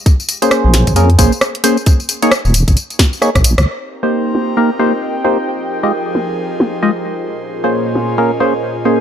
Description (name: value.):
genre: UK garage, two-step garage.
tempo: 133 BPM.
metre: 4/4.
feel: swing 60% on 16ths.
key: unclear.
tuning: A4 = 441 Hz.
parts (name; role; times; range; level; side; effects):
electronic kick drum; drums; 0.1-3.4 s; none; -11 LUFS; equal; overdrive, studio ambience.
garage drum kit; drums; 0.1-9.0 s; hi-hat, rim click, snare drum, tambourine; -16 LUFS; equal; overdrive, low-pass filter on snare, studio ambience, low-pass filter on hats, low-pass filter on perc.
percussive organ stab; stabs; 0.4-9.0 s; Ab3 to Eb5; -15 LUFS; equal; chorus, phaser, tape echo.
deep soft wobble bass; bass; 0.6-3.7 s; Eb1 to F2; -11 LUFS; equal; chorus.
airy breathy pad; sustained chords; 3.7-9.0 s; Bb2 to C5; -24 LUFS; equal; chorus, sidechain pumping.
warbly tape-like pad; texture; 4.0-9.0 s; C4 to Ab5; -22 LUFS; right 1 dB; chorus, built-in reverb, sidechain pumping.
room: light reverb.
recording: none.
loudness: -12 LUFS.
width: side -9 dB against mid.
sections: 0.0-3.7 A section; 3.7-9.0 B section.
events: drum fill 3.2-3.7; band accent 3.6.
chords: 0.1 Bbm9; 1.9 Eb7sus4; 3.7 Cm7; 5.5 Fm9; 7.3 Bbm9.